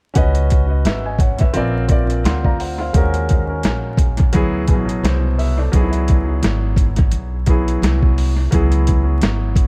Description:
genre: hip hop, jazz-hop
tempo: 86 BPM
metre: 4/4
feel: swing 57% on 16ths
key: C# minor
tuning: A4 = 440 Hz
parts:
  - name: warm grand piano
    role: accompaniment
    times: 0.1-9.6 s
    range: B2 to B#5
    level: -24 LUFS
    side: equal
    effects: analog delay
  - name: upright bass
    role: bass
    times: 0.2-9.7 s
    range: G#1 to D#2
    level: -21 LUFS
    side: equal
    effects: none
  - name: boom bap sampler-style drum kit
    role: drums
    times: 0.2-9.7 s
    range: hi-hat, kick drum, snare drum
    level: -19 LUFS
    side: equal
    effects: analog delay
room: studio reverb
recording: echo-heavy mix, vinyl crackle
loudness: -17 LUFS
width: mono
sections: 0.2-9.7 A section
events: none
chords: 0.2 C#sus2; 1.5 A#; 2.9 D#m7; 4.3 D9; 5.7 C#m7

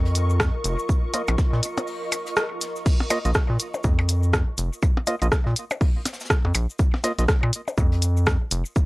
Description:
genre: minimal techno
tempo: 122 BPM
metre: 4/4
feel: swing 60% on 16ths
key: Bb minor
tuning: A4 = 440 Hz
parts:
  - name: rubbery square bass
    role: bass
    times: 0.0-8.6 s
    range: F1 to Bb2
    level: -21 LUFS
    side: equal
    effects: sidechain pumping
  - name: ethereal airy pad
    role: texture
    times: 0.0-2.9 s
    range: F4 to Db6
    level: -32 LUFS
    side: equal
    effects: ensemble chorus, built-in reverb, tremolo, sidechain pumping
  - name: jazz brush drum kit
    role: drums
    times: 0.1-8.9 s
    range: hi-hat, shaker, snare drum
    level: -41 LUFS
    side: left 1 dB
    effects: high-pass filter on hats, high-pass filter on snare, high-pass filter on perc, high-pass filter on room
  - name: minimal click drum kit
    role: drums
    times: 0.2-8.6 s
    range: crash cymbal, hi-hat, rim click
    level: -24 LUFS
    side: equal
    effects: none
  - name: cabasa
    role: percussion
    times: 0.2-8.9 s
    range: none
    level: -38 LUFS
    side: left 2 dB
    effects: none
  - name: electronic kick drum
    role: drums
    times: 0.4-8.9 s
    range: none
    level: -21 LUFS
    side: equal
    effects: none
  - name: percussion blips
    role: percussion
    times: 0.4-8.4 s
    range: none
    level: -29 LUFS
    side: left 2 dB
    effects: tape echo
  - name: percussive organ stab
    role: stabs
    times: 1.1-7.2 s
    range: Bb3 to Eb5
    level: -29 LUFS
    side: right 2 dB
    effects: chorus, tape echo
room: light reverb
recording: dry, gritty hardware recording, cassette tape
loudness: -20 LUFS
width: side -21 dB against mid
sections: 0.0-2.9 A section; 2.9-8.9 B section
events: break 1.9-2.9; band accent 2.4; drop 2.9-8.9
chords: 0.0 Bbsus4

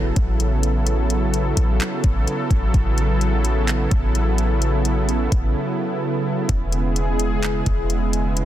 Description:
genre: hip hop, atmospheric cloud-rap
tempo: 128 BPM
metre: 4/4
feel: half-time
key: unclear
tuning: A4 = 444 Hz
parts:
  - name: warm analog pad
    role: sustained chords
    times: 0.0-8.4 s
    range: C#3 to A4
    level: -22 LUFS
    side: right 1 dB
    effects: chorus, sidechain pumping
  - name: concert harp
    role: arpeggios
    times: 0.0-1.1 s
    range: none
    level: barely audible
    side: none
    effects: none
  - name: clean 808-style bass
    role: bass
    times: 0.0-8.4 s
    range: E1 to A1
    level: -20 LUFS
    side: equal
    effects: none
  - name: impact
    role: sound effects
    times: 0.1-0.9 s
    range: none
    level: -44 LUFS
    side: left 1 dB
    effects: none
  - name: smooth R&B drum kit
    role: drums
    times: 0.2-8.4 s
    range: handclaps, hi-hat, kick drum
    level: -23 LUFS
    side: equal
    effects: none
room: digital ambience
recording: dense, heavily limited modern master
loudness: -18 LUFS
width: side -12 dB against mid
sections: 0.0-8.4 A section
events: impact 0.0-0.9; break 5.6-6.5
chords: 0.0 A69; 6.5 E6

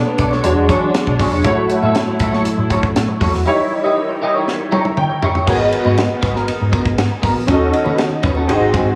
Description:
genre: polished 1980s jazz-funk pop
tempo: 119 BPM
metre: 4/4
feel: straight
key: unclear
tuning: A4 = 439 Hz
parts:
  - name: clear concert grand piano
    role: accompaniment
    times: 0.0-9.0 s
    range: G3 to A#5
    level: -20 LUFS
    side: equal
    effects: ensemble chorus
  - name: warm studio string section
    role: sustained chords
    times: 0.0-5.5 s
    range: D#3 to E4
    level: -27 LUFS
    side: equal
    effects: none
  - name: electric guitar at the edge of break-up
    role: riff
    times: 0.1-8.9 s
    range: B3 to E5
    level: -23 LUFS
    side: equal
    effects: analog chorus
  - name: congas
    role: percussion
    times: 0.1-8.5 s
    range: none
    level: -33 LUFS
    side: equal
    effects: none
  - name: hollow-body short-scale fingered electric bass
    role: bass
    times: 0.2-8.9 s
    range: E1 to E3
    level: -23 LUFS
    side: equal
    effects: none
  - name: tight funk drum kit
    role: drums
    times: 0.2-8.9 s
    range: crash cymbal, hi-hat, kick drum, ride cymbal, snare drum, toms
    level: -22 LUFS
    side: equal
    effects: none
room: light reverb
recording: small room ambience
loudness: -16 LUFS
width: mono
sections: 0.0-5.5 A section; 5.5-9.0 A section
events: grand piano fill 4.5-5.5; drum fill 4.5-5.5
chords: 0.4 E13; 1.4 A6; 3.5 D#7b9; 5.5 G#m9; 7.5 D#m7b5

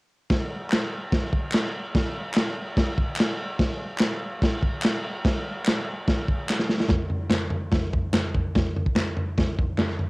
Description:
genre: rock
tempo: 145 BPM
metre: 4/4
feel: straight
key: none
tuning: none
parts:
  - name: crunchy breakbeat drum kit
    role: drums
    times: 0.3-10.1 s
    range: crash cymbal, kick drum, snare drum, toms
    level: -23 LUFS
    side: equal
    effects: none
  - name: group handclap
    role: percussion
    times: 0.7-9.9 s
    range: none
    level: -32 LUFS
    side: equal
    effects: none
room: light reverb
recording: home recording on cassette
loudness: -23 LUFS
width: side -24 dB against mid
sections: 0.3-6.9 A section; 6.9-10.1 B section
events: drum fill 6.5-6.9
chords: none

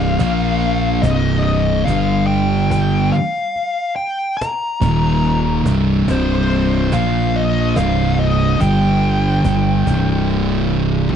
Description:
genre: stoner and doom metal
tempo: 71 BPM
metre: 4/4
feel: straight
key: C minor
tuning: A4 = 440 Hz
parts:
  - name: fuzz lead guitar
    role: melody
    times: 0.0-11.2 s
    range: C5 to Bb5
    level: -21 LUFS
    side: left 2 dB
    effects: wah, distortion, slapback echo
  - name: thick fuzz guitar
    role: riff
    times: 0.0-11.2 s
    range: C2 to Bb3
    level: -20 LUFS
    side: left 10 dB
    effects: distortion
  - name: thick fuzz guitar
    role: riff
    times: 0.0-11.2 s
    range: C2 to Bb3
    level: -19 LUFS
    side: right 10 dB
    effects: distortion
  - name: fuzz fingered electric bass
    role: bass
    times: 0.0-11.2 s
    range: C1 to Bb1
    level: -19 LUFS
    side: equal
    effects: overdrive
  - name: cajon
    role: drums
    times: 0.0-10.8 s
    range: none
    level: -23 LUFS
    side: equal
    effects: none
room: digital ambience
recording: dark, warm production, nothing above 10.5 kHz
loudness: -14 LUFS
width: side -8 dB against mid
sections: 0.0-11.2 A section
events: none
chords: 0.2 Bb5; 1.0 Cm; 1.9 G5; 4.8 Eb5; 5.7 C5; 6.9 Bb5; 7.8 Cm; 8.6 G5; 9.4 C5

